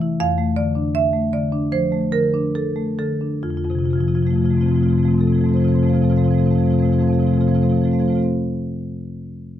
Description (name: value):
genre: classical, contemporary piece for solo marimba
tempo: 66-82 BPM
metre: 4/4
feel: rubato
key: F major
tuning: A4 = 441 Hz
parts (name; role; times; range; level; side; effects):
- marimba with medium hard mallets; solo; 0.0-8.3 s; F2 to F5; -16 LUFS; left 1 dB; none
room: light reverb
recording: close, detailed microphones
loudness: -16 LUFS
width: side -11 dB against mid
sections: 0.0-3.4 A section; 3.4-6.8 B section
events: slowing down 0.0-3.4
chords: 0.2 F6; 3.4 F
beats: | 0.19 0.94 1.72 2.55 | 3.44 4.29 5.13 5.98